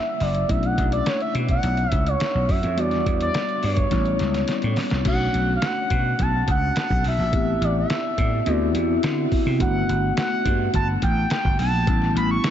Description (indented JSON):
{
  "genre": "polished 1980s jazz-funk pop",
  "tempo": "106 BPM",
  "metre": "4/4",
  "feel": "straight",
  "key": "unclear",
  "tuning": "A4 = 440 Hz",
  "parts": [
    { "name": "expressive synth lead", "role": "melody", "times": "0.0-12.5 s", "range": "C#5 to C#6", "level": "-25 LUFS", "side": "equal", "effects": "chorus, ping-pong delay" },
    { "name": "mellow tine electric piano", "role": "accompaniment", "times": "0.0-12.5 s", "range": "G3 to G4", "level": "-26 LUFS", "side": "left 2 dB", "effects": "medium stereo tremolo, wide subtle chorus" },
    { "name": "vintage slap bass", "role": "bass", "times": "0.2-12.4 s", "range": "F#1 to D3", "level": "-24 LUFS", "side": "equal", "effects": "none" },
    { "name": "lo-fi sampler-style drum kit", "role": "drums", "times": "0.2-12.5 s", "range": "crash cymbal, hi-hat, kick drum, snare drum", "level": "-26 LUFS", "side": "equal", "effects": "none" }
  ],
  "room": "moderate huge ambient reverb, RT60 8.3 s",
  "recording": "dreamy mix soaked in reverb, nothing above 7.8 kHz",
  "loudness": "-19 LUFS",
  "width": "side -10 dB against mid",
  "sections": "0.0-5.1 A section; 5.1-12.5 B section",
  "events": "drum fill 3.9-5.1",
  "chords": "0.5 Bm11; 2.8 Em7; 3.9 A7; 5.1 Bm7; 7.3 Am9; 8.5 D13; 9.6 Gmaj7; 11.9 A9",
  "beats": "| 0.49 1.07 1.64 2.21 | 2.78 3.35 3.92 4.49 | 5.05 5.62 6.19 6.76 | 7.33 7.90 8.47 9.04 | 9.60 10.17 10.74 11.31 | 11.87 12.44"
}